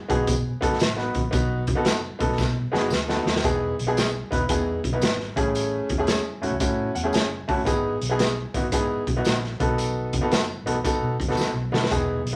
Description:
uptempo 1960s-style soul; 114 BPM; 4/4; swing 66% on 8ths; E major; A4 = 440 Hz
bright upright piano; accompaniment; 0.1-12.4 s; A3 to A5; -27 LUFS; equal
vintage muted fingered electric bass; bass; 0.1-12.4 s; E1 to B2; -32 LUFS; equal
raw garage drum kit; drums; 0.1-12.3 s; hi-hat, kick drum, snare drum; -28 LUFS; equal
congas; percussion; 0.1-12.3 s; -40 LUFS; equal
tambourine; percussion; 0.3-12.1 s; -42 LUFS; equal
moderate studio reverb, RT60 0.8 s; -24 LUFS; mono
0.0-3.4 A section; 3.4-12.4 B section
drum fill 2.4-3.4, 11.4-11.9; upright piano fill 6.6-7.7
0.0 B7; 3.4 Emaj7; 5.3 Amaj7; 7.7 Emaj7/G#; 9.5 B7

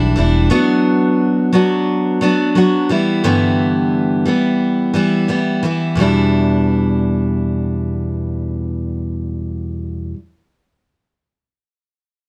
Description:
pop; 88 BPM; 4/4; straight; E minor; A4 = 440 Hz
picked steel-string acoustic guitar; accompaniment; 0.0-10.2 s; E2 to F#4; -17 LUFS; equal
fretless electric bass; bass; 0.0-0.5 s; E1 to B1; -17 LUFS; equal
light reverb; dark, warm production; -16 LUFS; mono
0.0-6.0 A section; 6.0-8.7 B section
0.0 Em7; 0.5 Bm/F#; 2.9 G6; 6.0 Em7

